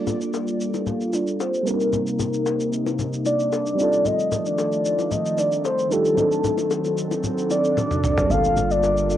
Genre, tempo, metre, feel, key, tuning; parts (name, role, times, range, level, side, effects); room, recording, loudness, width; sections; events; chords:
amapiano; 113 BPM; 4/4; straight; G minor; A4 = 440 Hz
soft octave-layered synth lead; melody; 0.0-9.2 s; A4 to F5; -23 LUFS; left 1 dB; chorus, phaser, low-pass filter, cassette tape, tape echo, plate reverb
FM electric piano with auto-pan; accompaniment; 0.0-9.2 s; F#3 to Bb4; -28 LUFS; right 6 dB; low-pass filter, cassette tape, plate reverb
airy breathy pad; sustained chords; 0.0-9.2 s; C3 to A4; -27 LUFS; equal; chorus, low-pass filter, cassette tape
electronic shaker and toms; drums; 0.1-9.2 s; -30 LUFS; equal; overdrive, cassette tape
bongos and congas; percussion; 0.1-9.0 s; -29 LUFS; left 6 dB
round analog bass; bass; 8.3-9.2 s; G1; -25 LUFS; equal
moderate booth ambience, RT60 0.2 s; home recording on cassette; -20 LUFS; side -11 dB against mid
0.0-9.2 A section
filter sweep 0.0-9.2; drum fill 7.8-8.3
0.0 Gm9; 1.7 Cm7; 3.8 F13; 6.2 D7b9; 8.3 Gm9